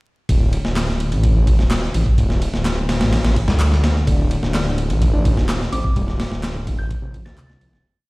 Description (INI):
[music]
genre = breakbeat, breaks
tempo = 127 BPM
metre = 4/4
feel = straight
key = D minor pentatonic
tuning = A4 = 440 Hz
[part]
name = detuned saw bass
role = bass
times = 0.3-7.8 s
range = D1 to D2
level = -19 LUFS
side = equal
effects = none
[part]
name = breakbeat sampler-style drum kit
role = drums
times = 0.3-7.8 s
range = kick drum, ride cymbal, snare drum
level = -19 LUFS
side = equal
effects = studio reverb
[part]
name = electronic handclaps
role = drums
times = 0.8-7.5 s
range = none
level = -31 LUFS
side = equal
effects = overdrive, studio reverb
[part]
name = overdriven reed electric piano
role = riff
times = 4.1-7.7 s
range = C3 to D4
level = -26 LUFS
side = left 1 dB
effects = fast tremolo, tube saturation, vintage 12-bit sampler grit, tape echo
[part]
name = soft synth bell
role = melody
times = 5.7-7.8 s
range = D6 to A6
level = -33 LUFS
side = equal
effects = chorus, phaser, telephone sound, tape echo
[sound]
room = little or no reverb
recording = played on a big sound system in a bare room, large studio reverb, vinyl crackle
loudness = -16 LUFS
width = side -24 dB against mid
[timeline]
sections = 0.3-7.8 groove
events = fade-out 5.3-7.8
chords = 0.3 D5